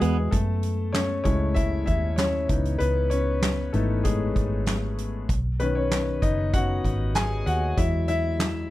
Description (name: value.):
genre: piano-driven pop.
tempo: 97 BPM.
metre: 4/4.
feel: straight.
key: unclear.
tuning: A4 = 439 Hz.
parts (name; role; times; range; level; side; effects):
clear upright piano; accompaniment; 0.0-8.7 s; D#3 to G#5; -26 LUFS; left 3 dB; none.
vintage muted fingered electric bass; bass; 0.0-8.7 s; F#1 to F#2; -26 LUFS; equal; none.
soft-mallet drum kit; drums; 0.0-8.5 s; handclaps, hi-hat, kick drum, snare drum; -28 LUFS; equal; none.
room: little or no reverb.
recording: none.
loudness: -22 LUFS.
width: side -15 dB against mid.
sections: 0.3-8.7 A section.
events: upright piano solo 0.3-8.7.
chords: 0.3 F#m7; 2.5 C#m7; 5.3 Badd9; 7.8 Eadd9.